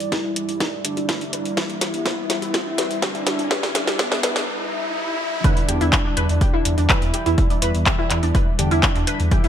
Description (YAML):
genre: melodic techno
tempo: 124 BPM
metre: 4/4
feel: straight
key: E minor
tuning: A4 = 440 Hz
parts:
  - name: wide unison lead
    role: melody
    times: 0.0-9.5 s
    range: B3 to E4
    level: -28 LUFS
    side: equal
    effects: sidechain pumping, ping-pong delay
  - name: dark analog pad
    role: sustained chords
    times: 0.0-9.5 s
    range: G3 to E5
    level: -30 LUFS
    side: equal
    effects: chorus, sidechain pumping
  - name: techno drum kit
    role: drums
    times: 0.0-9.5 s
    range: handclaps, hi-hat, snare drum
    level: -23 LUFS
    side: equal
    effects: none
  - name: riser and swell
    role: sound effects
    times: 0.0-5.4 s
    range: none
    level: -30 LUFS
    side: left 1 dB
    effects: none
  - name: warbly dusty pluck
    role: arpeggios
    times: 0.1-9.5 s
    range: D4 to B5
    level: -27 LUFS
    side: equal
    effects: lush chorus, sidechain pumping, ping-pong delay
  - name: electronic kick drum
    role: drums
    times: 0.1-9.4 s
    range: none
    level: -21 LUFS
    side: equal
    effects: high-pass filter on kick, high-pass filter on room
  - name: glassy wavetable pluck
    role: second line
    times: 5.4-9.5 s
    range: D3 to E3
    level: -31 LUFS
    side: left 2 dB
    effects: none
  - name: dark detuned saw bass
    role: bass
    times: 5.7-9.3 s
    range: E2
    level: -21 LUFS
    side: equal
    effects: sidechain pumping
room: moderate lush hall reverb, RT60 1.9 s, digital ambience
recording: bright 1980s-style digital production, high-pass filter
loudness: -18 LUFS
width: side -9 dB against mid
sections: 0.0-5.4 A section; 5.4-9.5 B section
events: build-up 0.0-5.4; drum fill 0.0-4.5; riser 0.0-5.4; filter sweep on synth arpeggio sound 0.0-5.4; filter sweep on analog synth lead 0.0-5.4; break 4.5-5.4; swell 4.5-5.4; drop 5.4-9.5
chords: 0.0 Em7